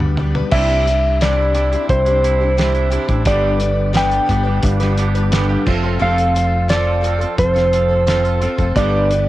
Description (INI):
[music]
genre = folk rock and heartland rock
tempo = 88 BPM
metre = 4/4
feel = straight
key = C major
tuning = A4 = 441 Hz
[part]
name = picked twelve-string acoustic guitar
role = accompaniment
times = 0.0-9.3 s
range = G2 to B4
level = -25 LUFS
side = left 7 dB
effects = cassette tape, plate reverb
[part]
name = bright tonewheel organ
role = sustained chords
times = 0.0-9.3 s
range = B3 to B4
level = -30 LUFS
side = equal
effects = chorus vibrato, fast rotary speaker, cassette tape, plate reverb
[part]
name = twangy electric guitar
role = riff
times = 0.0-9.3 s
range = G2 to A4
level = -25 LUFS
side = right 8 dB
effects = cassette tape
[part]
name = fingered electric bass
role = bass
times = 0.0-9.3 s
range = F1 to D2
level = -17 LUFS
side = equal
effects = none
[part]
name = damped 70s drum kit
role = drums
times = 0.0-9.3 s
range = crash cymbal, hi-hat, kick drum, snare drum, toms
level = -22 LUFS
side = equal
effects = cassette tape
[part]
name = clean lap steel guitar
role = melody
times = 0.5-9.3 s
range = C5 to G5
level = -18 LUFS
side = equal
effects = plate reverb
[part]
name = dark concert grand piano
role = accompaniment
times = 0.5-9.2 s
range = C4 to B5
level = -29 LUFS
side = right 8 dB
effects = cassette tape, plate reverb
[sound]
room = light reverb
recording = home recording on cassette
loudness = -14 LUFS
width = side -15 dB against mid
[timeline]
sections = 0.5-9.3 A section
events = drum fill 0.0-0.5; grand piano fill 4.6-6.0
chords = 0.0 G; 0.5 Cadd9; 3.3 G; 5.7 F; 8.8 G